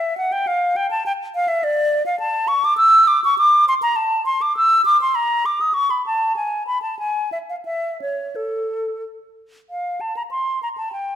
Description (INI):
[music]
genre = classical, baroque-style fantasia for unaccompanied flute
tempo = 86-106 BPM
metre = 3/4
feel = rubato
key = D minor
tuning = A4 = 444 Hz
[part]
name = hollow concert flute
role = solo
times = 0.0-11.2 s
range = A4 to E6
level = -17 LUFS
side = equal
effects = none
[sound]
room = moderate recital hall reverb, RT60 1.4 s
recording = none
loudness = -17 LUFS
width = side -10 dB against mid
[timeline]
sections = 0.0-9.7 A section; 9.7-11.2 A section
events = none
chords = none